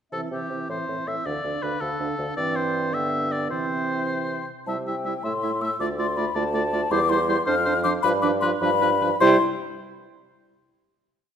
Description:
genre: quick classical-period movement for wind quintet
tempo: 106 BPM (dotted quarters)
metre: 6/8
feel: straight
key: C major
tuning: A4 = 440 Hz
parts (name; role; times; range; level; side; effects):
- mellow hollow concert flute; melody; 0.1-9.4 s; E5 to F6; -27 LUFS; left 6 dB; none
- clear oboe; second line; 0.1-9.4 s; G4 to E5; -28 LUFS; left 1 dB; none
- dark clarinet; accompaniment; 0.1-9.4 s; B3 to F4; -30 LUFS; right 7 dB; none
- warm French horn; accompaniment; 0.1-9.4 s; D3 to A3; -30 LUFS; equal; none
- mellow bassoon; bass; 0.1-9.4 s; D2 to C3; -28 LUFS; right 2 dB; none
room: wet recital hall reverb, RT60 1.6 s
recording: none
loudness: -21 LUFS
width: side -8 dB against mid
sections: 0.1-4.7 A section; 4.7-9.2 A section; 9.2-10.4 final chord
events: none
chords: 0.1 C; 0.7 Am; 1.3 Dm; 2.4 C/G; 2.9 G; 3.5 C; 5.2 Am; 5.8 Dm; 6.9 C/E; 7.5 Dm7/F; 8.0 G7; 9.2 C

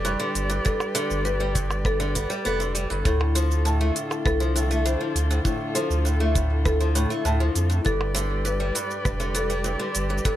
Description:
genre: folktronica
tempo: 100 BPM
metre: 4/4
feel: straight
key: unclear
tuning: A4 = 440 Hz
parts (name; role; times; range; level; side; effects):
- marimba with hard mallets; second line; 0.0-10.4 s; A4 to A5; -31 LUFS; left 1 dB; tape echo, plate reverb
- dark string quartet; sustained chords; 0.0-10.4 s; D3 to D5; -30 LUFS; equal; plate reverb
- picked old ladder-braced acoustic guitar; arpeggios; 0.0-10.4 s; G2 to B3; -28 LUFS; left 1 dB; tape echo, plate reverb
- warm sub bass; bass; 0.0-10.2 s; F1 to F2; -24 LUFS; equal; none
- minimal click drum kit; drums; 0.1-10.4 s; hi-hat, percussion blips, rim click, shaker; -31 LUFS; right 2 dB; none
- kick drum; drums; 0.7-10.4 s; none; -26 LUFS; equal; none
room: light reverb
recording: none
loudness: -21 LUFS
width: side -12 dB against mid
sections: 0.0-10.4 A section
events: none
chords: 0.0 G; 3.1 Dm; 7.9 G

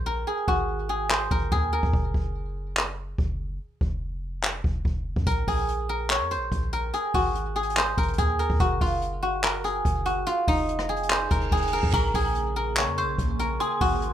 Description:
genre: hip hop, trap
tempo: 144 BPM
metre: 4/4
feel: half-time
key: Bb minor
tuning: A4 = 440 Hz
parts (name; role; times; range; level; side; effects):
- guzheng; melody; 0.0-14.1 s; Eb4 to Db5; -26 LUFS; equal; none
- warm 808-style bass; bass; 0.0-14.1 s; F1 to F2; -30 LUFS; equal; none
- jazz brush drum kit; drums; 0.5-14.1 s; crash cymbal, handclaps, hi-hat, kick drum, rim click; -26 LUFS; equal; none
- reverse cymbal; sound effects; 11.3-11.9 s; none; -36 LUFS; right 6 dB; none
- dark detuned synth bell; second line; 11.9-14.1 s; Bb5 to Db6; -33 LUFS; equal; chorus, digital delay
- airy breathy pad; sustained chords; 12.1-14.1 s; C3 to Ab4; -35 LUFS; right 1 dB; chorus, phaser
room: moderate studio reverb, RT60 0.6 s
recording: rough home demo mix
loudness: -23 LUFS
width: side -10 dB against mid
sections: 0.0-11.9 A section; 11.9-14.1 B section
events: break 0.0-5.3; reverse cymbal 11.3-11.9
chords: 0.3 Ab5; 1.9 N.C.; 5.3 Bb5; 6.9 Ab5; 8.6 Gbsus2; 10.3 Fmadd11; 11.9 Bbm7; 13.6 Abadd9

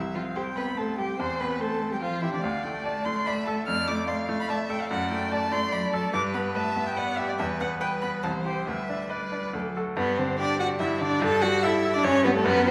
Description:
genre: quick classical-period movement for piano quartet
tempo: 144 BPM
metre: 3/4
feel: rubato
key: G major from 4.9 s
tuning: A4 = 439 Hz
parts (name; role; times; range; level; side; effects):
- dark violin; melody; 0.0-12.7 s; A4 to F6; -32 LUFS; equal; none
- bright baby grand piano; accompaniment; 0.0-12.7 s; C2 to D5; -31 LUFS; equal; none
- warm cello; second line; 0.1-12.7 s; D3 to A4; -35 LUFS; equal; none
- warm violin; second line; 0.1-12.7 s; A3 to F5; -34 LUFS; equal; none
room: wet recital hall reverb, RT60 1.6 s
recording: none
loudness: -27 LUFS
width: mono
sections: 0.0-10.0 A section; 10.0-12.7 B section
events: none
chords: 0.0 C5; 1.2 C/E; 2.4 D5; 3.7 Dm/F; 4.9 D/F#; 6.1 G; 7.4 Em; 8.2 C; 8.7 G/D; 9.5 D; 10.0 G5; 11.2 A5/G

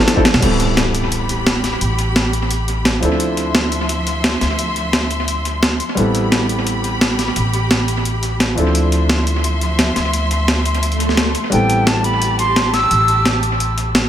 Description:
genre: liquid drum and bass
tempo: 173 BPM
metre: 4/4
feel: straight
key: A minor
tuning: A4 = 438 Hz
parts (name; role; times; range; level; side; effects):
- bright reedy jazz flute; melody; 0.0-0.1, 11.5-13.3 s; G5 to E6; -18 LUFS; equal; tape echo
- warm concert grand piano; accompaniment; 0.0-14.1 s; F3 to A4; -22 LUFS; equal; dub echo
- breakbeat sampler-style drum kit; drums; 0.1-14.0 s; crash cymbal, hi-hat, snare drum; -18 LUFS; equal; dub echo
- upright bass; bass; 0.3-14.1 s; A1 to D2; -20 LUFS; equal; none
- clear symphonic string section; sustained chords; 0.4-14.1 s; F3 to C6; -23 LUFS; left 1 dB; sidechain pumping
- impact and swell; sound effects; 0.4-1.8, 10.9-11.5 s; none; -23 LUFS; equal; none
room: light reverb, studio reverb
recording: echo-heavy mix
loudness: -14 LUFS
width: side -10 dB against mid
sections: 0.4-14.1 A section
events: drum fill 0.0-0.4; impact 0.4-1.8; swell 10.9-11.5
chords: 0.4 Am9; 3.0 Dm9; 6.0 Am9; 8.6 Dm9; 11.5 Am9

